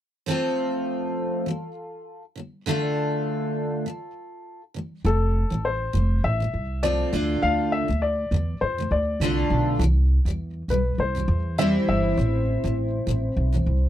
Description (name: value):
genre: pop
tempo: 101 BPM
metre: 4/4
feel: swing 55% on 16ths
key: unclear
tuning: A4 = 441 Hz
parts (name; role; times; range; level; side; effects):
- picked steel-string acoustic guitar; accompaniment; 0.3-13.9 s; A2 to C5; -26 LUFS; equal; double-tracked left and right
- upright bass; bass; 5.0-13.9 s; F1 to F2; -23 LUFS; equal; none
- warm upright piano; melody; 5.1-12.7 s; A4 to F5; -27 LUFS; left 4 dB; none
room: little or no reverb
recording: dry, close 1970s-style studio recording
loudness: -22 LUFS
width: side -12 dB against mid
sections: 0.3-5.0 A section; 5.0-13.9 B section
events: none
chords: 0.3 F; 2.4 Dm; 5.0 F; 7.1 Dm; 9.8 C; 12.2 Am